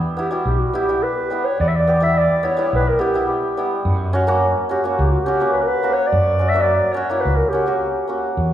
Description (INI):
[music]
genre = klezmer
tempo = 106 BPM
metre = 4/4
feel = straight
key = unclear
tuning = A4 = 440 Hz
[part]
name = hammered dulcimer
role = accompaniment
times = 0.0-8.2 s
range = G3 to G4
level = -21 LUFS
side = right 1 dB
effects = none
[part]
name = dark clarinet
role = melody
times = 0.2-8.3 s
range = F#4 to E5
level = -19 LUFS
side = equal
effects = none
[part]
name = fretless electric bass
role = bass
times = 0.5-8.5 s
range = B1 to F#2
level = -21 LUFS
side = equal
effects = none
[sound]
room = wet recital hall reverb, RT60 1.5 s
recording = recorded in a church or concert hall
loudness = -16 LUFS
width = side -11 dB against mid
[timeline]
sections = 0.0-8.5 A section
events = none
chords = 0.0 Em; 3.9 F#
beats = 0.45 1.02 | 1.59 2.16 2.72 3.29 | 3.86 4.42 4.99 5.55 | 6.12 6.68 7.25 7.81 | 8.37